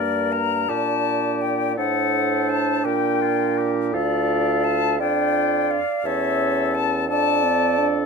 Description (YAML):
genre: classical, slow romantic movement for wind quintet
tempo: 56 BPM (dotted quarters)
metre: 6/8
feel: rubato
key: G minor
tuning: A4 = 436 Hz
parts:
  - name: silver concert flute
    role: melody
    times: 0.0-7.9 s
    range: D5 to Bb5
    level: -24 LUFS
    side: left 12 dB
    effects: none
  - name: warm oboe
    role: second line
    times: 0.0-8.1 s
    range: F4 to Bb4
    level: -28 LUFS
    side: left 4 dB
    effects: none
  - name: mellow French horn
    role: accompaniment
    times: 0.0-8.1 s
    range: Bb3 to F4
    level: -27 LUFS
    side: right 3 dB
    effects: none
  - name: warm bassoon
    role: bass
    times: 0.0-8.1 s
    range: D2 to Bb2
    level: -25 LUFS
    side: right 2 dB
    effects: none
  - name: mellow clarinet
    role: accompaniment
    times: 0.7-8.1 s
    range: Bb4 to F5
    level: -25 LUFS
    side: right 10 dB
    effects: none
room: light reverb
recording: minimal, uncompressed stereo recording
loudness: -19 LUFS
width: side -5 dB against mid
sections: 0.0-8.1 A section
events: none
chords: 0.0 Gm; 1.8 D7/A; 2.9 Gm/Bb; 3.9 Dm; 6.1 A/E; 7.1 Dm/F